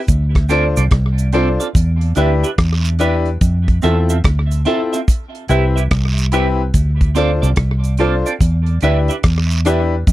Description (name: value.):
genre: roots reggae.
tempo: 72 BPM.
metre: 4/4.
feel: swing 65% on 16ths.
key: unclear.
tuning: A4 = 439 Hz.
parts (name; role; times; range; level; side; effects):
vintage muted fingered electric bass; bass; 0.1-10.1 s; C2 to F2; -15 LUFS; equal; none.
damped 70s drum kit; drums; 0.1-10.1 s; hi-hat, kick drum, rim click; -16 LUFS; equal; none.
cabasa and guiro; percussion; 0.1-10.1 s; none; -29 LUFS; right 4 dB; none.
semi-hollow electric guitar; accompaniment; 0.5-9.8 s; C4 to E5; -22 LUFS; right 7 dB; phaser, tape echo.
clear upright piano; stabs; 0.5-9.9 s; C4 to C5; -18 LUFS; left 4 dB; none.
room: little or no reverb.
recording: dry, close 1970s-style studio recording.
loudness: -13 LUFS.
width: side -15 dB against mid.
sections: 0.0-10.1 A section.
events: none.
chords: 0.1 Dm7; 1.8 Em7; 3.4 Fmaj7; 5.1 Cmaj7; 6.7 Dm7; 8.4 Em7.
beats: | 0.09 0.92 1.75 2.58 | 3.42 4.25 5.08 5.91 | 6.74 7.58 8.41 9.24 | 10.07.